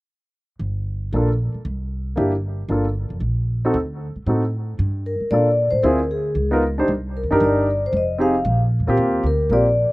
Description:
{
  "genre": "jazz, small-group swing and bop",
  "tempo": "229 BPM",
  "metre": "4/4",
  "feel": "swing 58% on 8ths",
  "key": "G minor",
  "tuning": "A4 = 440 Hz",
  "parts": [
    { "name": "upright bass", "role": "bass", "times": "0.6-9.9 s", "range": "F1 to Bb2", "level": "-22 LUFS", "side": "equal", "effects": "none" },
    { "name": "warm concert grand piano", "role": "accompaniment", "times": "1.1-9.7 s", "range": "Bb3 to C5", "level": "-21 LUFS", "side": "equal", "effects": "none" },
    { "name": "vibraphone with soft mallets", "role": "melody", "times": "5.1-9.9 s", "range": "Ab4 to F5", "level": "-21 LUFS", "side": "left 2 dB", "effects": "slapback echo" }
  ],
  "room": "little or no reverb",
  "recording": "recorded outdoors, with no room sound",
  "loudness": "-18 LUFS",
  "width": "side -20 dB against mid",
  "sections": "0.6-4.8 A section; 4.8-9.9 B section",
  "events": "none",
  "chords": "0.6 Gm; 1.6 C7; 2.7 Gm7; 3.7 D7b9; 4.8 Gm7; 5.8 Dm7b5; 6.4 C#13; 6.9 Cm9; 7.9 Fm7; 8.5 Bb5; 9.0 Eb69"
}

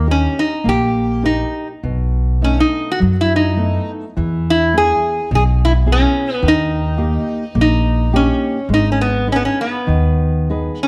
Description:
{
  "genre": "fado-style ballad",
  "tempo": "105 BPM",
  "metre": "4/4",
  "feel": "uneven beats, rubato",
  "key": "unclear",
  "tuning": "A4 = 440 Hz",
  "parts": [
    { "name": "metal-body resonator slide guitar", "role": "melody", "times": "0.0-10.9 s", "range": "B3 to G#4", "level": "-19 LUFS", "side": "equal", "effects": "none" },
    { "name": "nylon-string guitar", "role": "accompaniment", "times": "0.0-10.9 s", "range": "B2 to B4", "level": "-23 LUFS", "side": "equal", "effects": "none" },
    { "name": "upright bass", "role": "bass", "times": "0.0-10.7 s", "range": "G#1 to F#2", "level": "-20 LUFS", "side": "equal", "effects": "none" }
  ],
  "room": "light reverb",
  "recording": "none",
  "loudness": "-16 LUFS",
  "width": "mono",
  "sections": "0.0-10.9 A section",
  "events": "none",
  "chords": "0.0 D#; 1.8 B7; 4.2 E; 6.4 D#; 8.7 G#m"
}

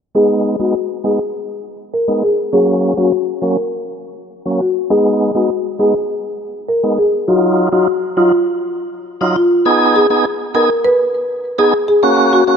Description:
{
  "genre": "dancehall",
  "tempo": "101 BPM",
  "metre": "4/4",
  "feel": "straight",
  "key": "unclear",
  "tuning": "A4 = 440 Hz",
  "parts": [
    { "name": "tonewheel organ", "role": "accompaniment", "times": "0.1-12.6 s", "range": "Gb3 to Ab4", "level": "-16 LUFS", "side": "right 2 dB", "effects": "overdrive, fast rotary speaker" },
    { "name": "marimba with soft mallets", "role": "melody", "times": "0.2-12.4 s", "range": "F4 to Cb5", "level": "-15 LUFS", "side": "left 1 dB", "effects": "digital delay" }
  ],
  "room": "light reverb, small room reverb",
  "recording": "dark, warm production, low-pass filter",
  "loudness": "-12 LUFS",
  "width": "side -7 dB against mid",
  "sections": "0.2-9.7 A section; 9.7-12.6 B section",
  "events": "filter sweep 0.2-9.7",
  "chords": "0.2 Abm; 2.5 Gb; 4.9 Abm; 7.3 Ebmadd9; 9.7 Abm; 12.0 Gb"
}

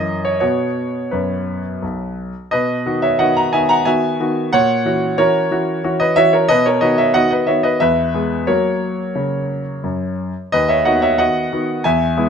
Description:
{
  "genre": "classical-period piano sonatina",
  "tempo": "90 BPM",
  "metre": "3/4",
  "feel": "rubato",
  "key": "B major",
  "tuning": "A4 = 441 Hz",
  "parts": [
    { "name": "clear grand piano", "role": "solo", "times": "0.0-12.3 s", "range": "B1 to A#5", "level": "-15 LUFS", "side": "equal", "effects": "none" }
  ],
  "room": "light reverb",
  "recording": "close, detailed microphones",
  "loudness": "-15 LUFS",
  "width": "side -7 dB against mid",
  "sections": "0.0-2.5 A section; 2.5-12.3 A section",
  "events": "none",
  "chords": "0.4 B5; 2.5 B; 4.5 F#7/A#; 6.5 B; 7.8 E; 8.5 F#; 10.5 B/D#"
}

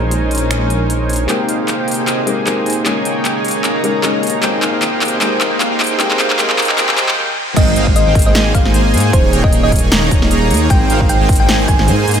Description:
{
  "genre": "future bass",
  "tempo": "153 BPM",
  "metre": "4/4",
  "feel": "swing 56% on 16ths, half-time",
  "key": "Ab major",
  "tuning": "A4 = 440 Hz",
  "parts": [
    { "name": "felt-muted upright piano", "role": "accompaniment", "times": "0.0-7.6 s", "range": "Ab3 to C6", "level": "-22 LUFS", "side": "left 4 dB", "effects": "sidechain pumping, ping-pong delay" },
    { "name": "rich chamber string section", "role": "sustained chords", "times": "0.0-7.5 s", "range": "C3 to G4", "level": "-26 LUFS", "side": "left 1 dB", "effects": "sidechain pumping" },
    { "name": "soft supersaw", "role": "riff", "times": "0.0-12.2 s", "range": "Bb3 to Bb5", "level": "-17 LUFS", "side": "right 1 dB", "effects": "sidechain pumping, low-pass filter, ping-pong delay" },
    { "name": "wide detuned saw bass", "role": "bass", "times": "0.0-12.2 s", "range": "Eb1 to Ab2", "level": "-18 LUFS", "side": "equal", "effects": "chorus, sidechain pumping, high-pass filter" },
    { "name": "big-room dance drum kit", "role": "drums", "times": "0.1-12.2 s", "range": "crash cymbal, finger snaps, handclaps, hi-hat, snare drum", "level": "-18 LUFS", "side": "equal", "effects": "none" },
    { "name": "riser and noise sweep", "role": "sound effects", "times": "4.7-7.6 s", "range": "none", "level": "-26 LUFS", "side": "equal", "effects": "none" },
    { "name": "thumb-piano-like synth pluck", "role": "melody", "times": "7.6-11.8 s", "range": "C5 to Ab5", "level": "-20 LUFS", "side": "equal", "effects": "chorus, sidechain pumping, ping-pong delay" },
    { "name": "electronic kick drum", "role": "drums", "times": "7.6-11.8 s", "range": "none", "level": "-13 LUFS", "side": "equal", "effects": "none" }
  ],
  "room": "moderate lush hall reverb, RT60 1.8 s, digital ambience",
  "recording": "high-pass filter",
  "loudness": "-11 LUFS",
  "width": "side -8 dB against mid",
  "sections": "0.0-1.3 A section; 1.3-7.6 B section; 7.6-12.2 C section",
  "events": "build-up 1.3-7.6; drum fill 1.3-7.2; filter sweep on supersaw synth 1.3-7.6; filter sweep 1.3-7.6; noise sweep 6.0-7.6; break 7.2-7.6; drop 7.6-12.2",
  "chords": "0.0 Bbm11; 1.3 Abmaj9; 2.9 Eb7sus4; 4.4 Abmaj9; 6.0 Bbm11; 7.6 Abmaj9; 9.1 Eb7sus4; 10.7 Abmaj9"
}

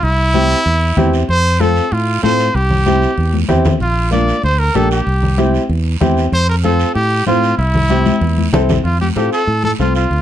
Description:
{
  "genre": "latin, cumbia",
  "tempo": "190 BPM",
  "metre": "4/4",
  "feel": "straight",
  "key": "F major",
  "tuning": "A4 = 435 Hz",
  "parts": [
    { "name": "bright trumpet", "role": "melody", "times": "0.0-10.2 s", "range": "E4 to D5", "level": "-17 LUFS", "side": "right 1 dB", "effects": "none" },
    { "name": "fingered electric bass", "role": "bass", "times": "0.0-10.2 s", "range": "Bb1 to A2", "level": "-16 LUFS", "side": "equal", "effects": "none" },
    { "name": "congas", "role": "percussion", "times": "0.0-10.2 s", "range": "none", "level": "-20 LUFS", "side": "left 4 dB", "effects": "none" },
    { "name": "guiro", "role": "percussion", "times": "0.0-10.2 s", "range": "none", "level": "-30 LUFS", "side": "right 7 dB", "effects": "none" },
    { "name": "warm upright piano", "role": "accompaniment", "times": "0.3-10.0 s", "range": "Bb3 to C5", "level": "-18 LUFS", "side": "equal", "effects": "none" }
  ],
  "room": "light reverb",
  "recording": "dark, warm production",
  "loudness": "-12 LUFS",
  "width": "side -11 dB against mid",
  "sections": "0.0-8.8 A section; 8.8-10.2 B section",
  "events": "drum fill 3.3-3.8, 8.1-8.8",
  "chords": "0.0 C; 1.3 F; 2.5 C; 3.8 Bb; 5.1 C; 6.3 Fadd9; 7.6 C; 8.8 F"
}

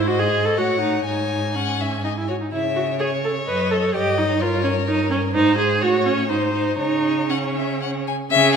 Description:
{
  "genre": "quick classical-period movement for string quartet",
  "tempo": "116-130 BPM",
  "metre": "3/4",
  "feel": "rubato",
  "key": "C# minor",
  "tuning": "A4 = 439 Hz",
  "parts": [
    { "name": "rich violin", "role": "melody", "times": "0.0-8.5 s", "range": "B#4 to G#5", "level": "-25 LUFS", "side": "left 9 dB", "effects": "none" },
    { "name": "warm violin", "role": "second line", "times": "0.0-8.6 s", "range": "G#4 to G#5", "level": "-26 LUFS", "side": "left 4 dB", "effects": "none" },
    { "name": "warm viola", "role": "accompaniment", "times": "0.0-8.6 s", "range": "C#4 to B4", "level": "-21 LUFS", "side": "right 2 dB", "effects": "none" },
    { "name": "rich cello", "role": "bass", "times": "0.0-8.6 s", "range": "F#2 to C#3", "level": "-26 LUFS", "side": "right 4 dB", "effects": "none" }
  ],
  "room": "wet recital hall reverb, RT60 1.5 s",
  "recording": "minimal, uncompressed stereo recording",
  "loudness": "-18 LUFS",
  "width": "side -6 dB against mid",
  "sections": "0.0-8.3 A section",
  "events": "none",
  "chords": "0.0 G#; 0.6 F#m/A; 1.1 C#m/G#; 2.0 G#5; 2.5 C#m; 3.5 D#dim/F#; 4.0 D#7/G; 5.3 G#; 5.8 F#m/A; 6.3 G#; 6.8 N.C."
}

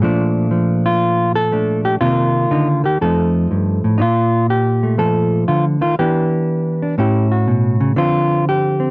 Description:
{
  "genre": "solo jazz",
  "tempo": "121 BPM",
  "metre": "4/4",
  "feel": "swing 67% on 8ths",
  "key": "Bb major",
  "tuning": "A4 = 435 Hz",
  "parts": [
    { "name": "hollow-body jazz guitar", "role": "solo", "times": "0.0-8.9 s", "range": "F2 to A4", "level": "-13 LUFS", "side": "equal", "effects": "none" }
  ],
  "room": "light reverb",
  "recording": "cassette tape, nothing above 7.8 kHz",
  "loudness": "-13 LUFS",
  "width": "side -25 dB against mid",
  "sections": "0.0-4.0 A section; 4.0-8.9 B section",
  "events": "none",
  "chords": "0.0 Bbmaj7; 2.0 Cm7; 3.0 F7; 4.0 Bbmaj7; 6.0 Em7; 7.0 A7; 8.0 Dm7"
}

